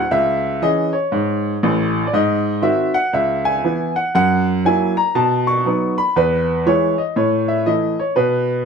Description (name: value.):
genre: jazz, stride piano.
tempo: 119 BPM.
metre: 4/4.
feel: swing 64% on 8ths.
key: unclear.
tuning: A4 = 441 Hz.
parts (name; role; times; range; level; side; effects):
clear baby grand piano; solo; 0.0-8.7 s; A1 to C#6; -15 LUFS; equal; none.
room: moderate studio reverb, RT60 1.0 s.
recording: none.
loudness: -15 LUFS.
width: side -6 dB against mid.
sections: 0.0-8.7 A section.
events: none.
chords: 0.1 C#m; 2.1 G#7; 3.1 C#m7; 4.1 F#7; 5.2 B; 6.2 E; 7.2 A5.